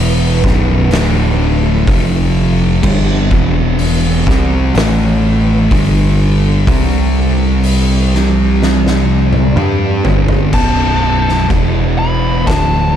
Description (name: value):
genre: stoner and doom metal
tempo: 62 BPM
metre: 4/4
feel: straight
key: unclear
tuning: A4 = 441 Hz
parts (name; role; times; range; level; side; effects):
- swarming drone; sustained chords; 0.0-13.0 s; C4 to F#5; -25 LUFS; right 3 dB; none
- thick fuzz guitar; riff; 0.0-13.0 s; B1 to G4; -16 LUFS; left 9 dB; distortion
- thick fuzz guitar; riff; 0.0-13.0 s; B1 to G4; -17 LUFS; right 9 dB; distortion
- growling picked electric bass; bass; 0.0-13.0 s; B0 to G2; -15 LUFS; equal; overdrive
- oversized low-tuned drum kit; drums; 0.4-12.7 s; crash cymbal, hi-hat, kick drum, snare drum, toms; -17 LUFS; equal; none
- fuzz lead guitar; melody; 10.5-13.0 s; A5 to B5; -17 LUFS; left 2 dB; distortion
room: small room ambience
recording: dark, warm production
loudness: -10 LUFS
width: side -9 dB against mid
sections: 0.0-10.5 A section; 10.5-13.0 B section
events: drum fill 8.6-10.5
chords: 0.4 B5; 0.9 D5; 1.9 F5; 2.8 G5; 3.3 E5; 4.3 G5; 4.8 A5; 5.7 G5; 6.7 C5; 9.6 G5; 10.5 B5; 11.5 E5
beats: 0.92 1.88 | 2.84 3.79 4.75 5.71 | 6.68 7.64 8.60 9.57 | 10.54 11.51 12.48